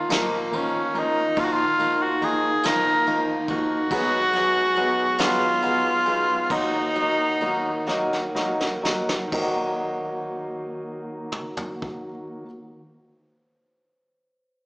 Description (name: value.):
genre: six-eight pop ballad.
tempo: 40-47 BPM (dotted quarters).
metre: 6/8.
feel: straight.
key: Eb minor.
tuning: A4 = 440 Hz.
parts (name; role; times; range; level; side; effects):
clear tenor saxophone; melody; 0.0-8.4 s; Bb3 to Bb4; -22 LUFS; equal; none.
mellow tonewheel organ; sustained chords; 0.0-12.4 s; Eb3 to Ab4; -32 LUFS; equal; fast rotary speaker.
direct-recorded clean electric guitar; arpeggios; 0.0-12.9 s; Ab2 to Ab4; -32 LUFS; right 1 dB; spring reverb.
warm concert grand piano; accompaniment; 0.1-12.5 s; Eb3 to Eb4; -28 LUFS; equal; none.
vintage brush drum kit; drums; 0.1-12.1 s; crash cymbal, kick drum, ride cymbal, snare drum, toms; -30 LUFS; equal; none.
room: wet recital hall reverb, RT60 1.5 s.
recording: recorded in a church or concert hall, small speaker sound.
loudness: -20 LUFS.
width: side -26 dB against mid.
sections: 0.0-9.3 A section; 9.3-12.3 B section.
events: slowing down 3.9-9.3; drum fill 7.9-9.3.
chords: 0.0 Bbsus4; 3.9 Abm7; 6.5 Ebm.